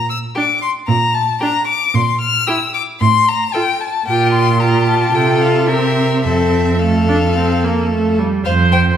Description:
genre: quick classical-period movement for string quartet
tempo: 112 BPM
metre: 4/4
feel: rubato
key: F major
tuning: A4 = 440 Hz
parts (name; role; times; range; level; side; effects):
- rich violin; melody; 0.0-8.8 s; E5 to F6; -17 LUFS; left 5 dB; none
- rich cello; bass; 0.0-8.9 s; F2 to C3; -17 LUFS; right 4 dB; none
- rich violin; second line; 0.4-8.8 s; G4 to C5; -20 LUFS; left 3 dB; none
- rich viola; accompaniment; 0.4-9.0 s; G3 to C5; -18 LUFS; right 2 dB; none
room: wet recital hall reverb, RT60 1.5 s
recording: none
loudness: -13 LUFS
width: side -9 dB against mid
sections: 0.0-8.5 A section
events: none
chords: 0.0 Gm/Bb (rootless); 1.9 Bbsus2; 3.0 F/A (rootless); 4.1 Gm7/Bb; 5.1 F/C; 5.7 C7; 6.2 F; 8.5 F5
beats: 0.36 0.89 1.42 | 1.95 2.48 3.02 3.55 | 4.08 4.61 5.15 5.69 | 6.25 6.81 7.36 7.91 | 8.45

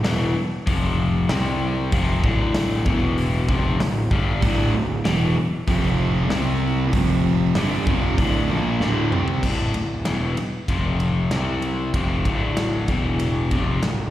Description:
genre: hard rock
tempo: 96 BPM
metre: 4/4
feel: straight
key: D dorian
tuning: A4 = 441 Hz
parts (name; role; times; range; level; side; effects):
- overdriven semi-hollow guitar; riff; 0.0-14.1 s; D2 to C4; -24 LUFS; left 4 dB; spring reverb, slapback echo
- fuzz picked electric bass; bass; 0.0-14.1 s; D1 to C2; -23 LUFS; equal; overdrive
- big rock drum kit; drums; 0.0-14.0 s; crash cymbal, hi-hat, kick drum, ride cymbal, snare drum, toms; -25 LUFS; equal; none
- sludgy distorted guitar; riff; 4.4-9.4 s; D2 to C4; -24 LUFS; right 8 dB; overdrive
room: little or no reverb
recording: live gig heard through the venue's PA, recital hall reverb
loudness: -19 LUFS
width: side -13 dB against mid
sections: 0.0-9.4 A section; 9.4-14.1 B section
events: drum fill 8.8-9.4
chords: 0.0 N.C.; 0.7 F5; 1.3 C5; 1.9 Dm; 2.9 E5; 3.5 Dm; 5.7 F5; 6.3 C5; 6.9 F5; 7.6 Dm; 9.4 D5; 10.7 F5; 11.3 C5; 11.9 Dm; 12.9 E5; 13.5 Dm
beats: 0.04 0.67 1.29 | 1.92 2.55 3.17 3.80 | 4.43 5.05 5.68 6.30 | 6.93 7.56 8.18 8.81 | 9.44 10.06 10.69 11.32 | 11.95 12.57 13.20 13.83

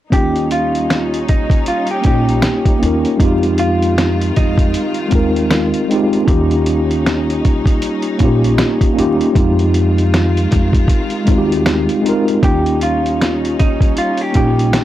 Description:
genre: lo-fi hip hop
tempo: 78 BPM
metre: 4/4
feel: swing 60% on 16ths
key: unclear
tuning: A4 = 439 Hz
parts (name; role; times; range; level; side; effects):
- vintage hollow-body jazz guitar; melody; 0.1-4.9, 12.4-14.8 s; Eb4 to G4; -20 LUFS; right 1 dB; none
- mellow tine electric piano; accompaniment; 0.1-14.8 s; Ab3 to Bb4; -16 LUFS; equal; medium stereo tremolo, cassette tape
- warm studio string section; sustained chords; 0.1-14.8 s; Eb3 to F4; -25 LUFS; left 1 dB; none
- upright bass; bass; 0.1-14.7 s; Bb1 to F2; -19 LUFS; equal; none
- lo-fi sampler-style drum kit; drums; 0.1-14.8 s; finger snaps, hi-hat, kick drum, snare drum; -16 LUFS; equal; none
room: little or no reverb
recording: dry, gritty hardware recording, vinyl crackle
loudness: -12 LUFS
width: side -13 dB against mid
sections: 0.1-14.8 A section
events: none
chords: 0.1 Eb7; 3.2 Fm7; 6.3 Eb7; 9.4 Fm7; 12.4 Eb7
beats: | 0.12 0.89 1.66 2.43 | 3.20 3.97 4.74 5.51 | 6.28 7.05 7.82 8.59 | 9.35 10.12 10.89 11.66 | 12.43 13.20 13.97 14.74

